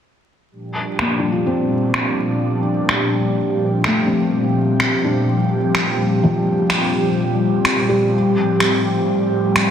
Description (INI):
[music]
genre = future garage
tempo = 126 BPM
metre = 4/4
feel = swing 65% on 16ths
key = G minor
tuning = A4 = 441 Hz
[part]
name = airy breathy pad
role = sustained chords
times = 0.5-9.7 s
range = A2 to G4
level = -18 LUFS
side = equal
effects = chorus, phaser
[part]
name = felt-muted upright piano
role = accompaniment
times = 1.0-8.3 s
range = F3 to F4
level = -21 LUFS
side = left 2 dB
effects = low-pass filter, dub echo
[part]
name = electronic finger snaps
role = drums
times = 1.0-9.7 s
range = none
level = -21 LUFS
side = equal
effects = soft clipping on snare, low-pass filter on snare, low-pass filter on room
[sound]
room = wet lush hall reverb, RT60 2.1 s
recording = dense, heavily limited modern master, vinyl crackle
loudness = -15 LUFS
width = side -8 dB against mid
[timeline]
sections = 0.5-9.7 A section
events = filter sweep on felt piano 0.5-9.7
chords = 0.5 Gm7; 8.1 Fadd9